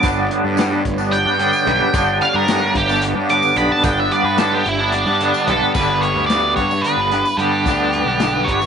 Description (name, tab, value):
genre	psychedelic rock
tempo	220 BPM (eighths)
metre	7/8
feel	straight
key	G lydian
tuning	A4 = 440 Hz
part	octave-fuzz lead guitar	melody	0.0-8.7 s	D4 to D6	-18 LUFS	right 2 dB	distortion, slapback echo
part	muted chamber string section	sustained chords	0.0-8.7 s	G3 to C#5	-31 LUFS	right 9 dB	none
part	twangy electric guitar	riff	0.0-8.7 s	G2 to D4	-18 LUFS	equal	tremolo, double-tracked left and right
part	fuzz picked electric bass	bass	0.0-8.7 s	G1 to G2	-24 LUFS	equal	overdrive
part	crunchy breakbeat drum kit	drums	0.0-8.6 s	crash cymbal, hi-hat, kick drum, snare drum	-24 LUFS	left 3 dB	none
part	tambourine	percussion	0.0-8.7 s	none	-38 LUFS	left 12 dB	none
room	light reverb, studio reverb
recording	1960s-style stereo with parts hard left and right, nothing above 10.5 kHz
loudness	-14 LUFS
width	side -7 dB against mid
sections	0.0-5.8 A section; 5.8-8.7 B section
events	lead electric guitar solo 0.0-5.8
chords	0.0 G